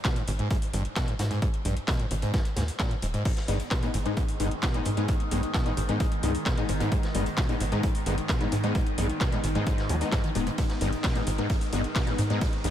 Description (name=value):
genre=driving peak-time techno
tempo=131 BPM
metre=4/4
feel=straight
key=G# harmonic minor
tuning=A4 = 441 Hz
part: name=screaming distorted acid line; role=riff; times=0.0-12.7 s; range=G2 to G#3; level=-31 LUFS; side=equal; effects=distortion, wide subtle chorus, sidechain pumping, analog delay
part: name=electronic kick drum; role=drums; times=0.0-12.5 s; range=none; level=-28 LUFS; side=equal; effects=none
part: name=raw garage drum kit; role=drums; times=0.0-12.7 s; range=hi-hat, snare drum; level=-42 LUFS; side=equal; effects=none
part: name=techno drum kit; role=drums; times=0.0-12.7 s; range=crash cymbal, handclaps, hi-hat, ride cymbal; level=-36 LUFS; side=equal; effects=none
part: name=tight sequencer bass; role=bass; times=0.3-12.7 s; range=D#1 to G#2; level=-29 LUFS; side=equal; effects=sidechain pumping
part: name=overtone-sweeping drone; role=drone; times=4.0-12.7 s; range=G#2 to D#3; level=-35 LUFS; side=right 1 dB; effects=chorus, built-in reverb, sidechain pumping
part: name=rave stab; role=stabs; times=3.5-12.7 s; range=G#3 to D#4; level=-32 LUFS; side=left 3 dB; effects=chorus, built-in reverb, sidechain pumping, analog delay
room=light reverb, digital ambience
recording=none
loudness=-25 LUFS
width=side -11 dB against mid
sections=0.0-12.7 A section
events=none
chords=0.0 G#m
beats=0.05 0.51 0.96 | 1.42 1.88 2.34 2.80 | 3.25 3.71 4.17 4.63 | 5.09 5.54 6.00 6.46 | 6.92 7.38 7.83 8.29 | 8.75 9.21 9.67 10.12 | 10.58 11.04 11.50 11.96 | 12.41